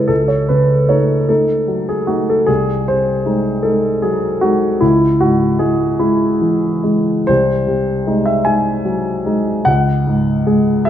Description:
classical, romantic character piece for solo piano; 50 BPM (dotted quarters); 6/8; rubato; C# minor; A4 = 444 Hz
warm grand piano; solo; 0.0-10.9 s; B#1 to G#5; -13 LUFS; equal
moderate recital hall reverb, RT60 1.5 s; -13 LUFS; side -10 dB against mid
0.0-10.9 A section
0.1 D#m7b5/C#; 2.5 G#7/B#; 4.8 C#m; 7.3 G#7/B#; 9.7 C#5
| 0.10 1.29 | 2.48 3.65 | 4.82 6.02 | 7.29 8.47 | 9.67 10.86

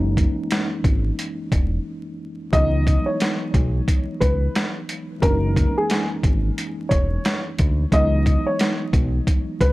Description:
hip hop, boom-bap hip-hop; 89 BPM; 4/4; swing 63% on 16ths; C# dorian; A4 = 442 Hz
mellow tine electric piano; accompaniment; 0.0-9.7 s; C#2 to D#4; -27 LUFS; equal; medium stereo tremolo, high-pass filter, low-pass filter
deep dub fingered electric bass; bass; 0.0-9.7 s; E1 to D2; -21 LUFS; equal
boom bap sampler-style drum kit; drums; 0.2-9.7 s; hi-hat, kick drum, snare drum; -20 LUFS; equal
dark upright piano; melody; 2.5-9.7 s; G#4 to D#5; -24 LUFS; equal; high-pass filter, low-pass filter
little or no reverb; dry, gritty hardware recording, vinyl crackle; -18 LUFS; side -19 dB against mid
0.0-9.7 A section
break 0.0-2.5
0.0 F#13; 2.5 C#m11; 5.2 F#13; 7.9 C#m11
0.51 1.18 1.85 | 2.53 3.20 3.88 4.55 | 5.23 5.90 6.57 7.25 | 7.92 8.60 9.27

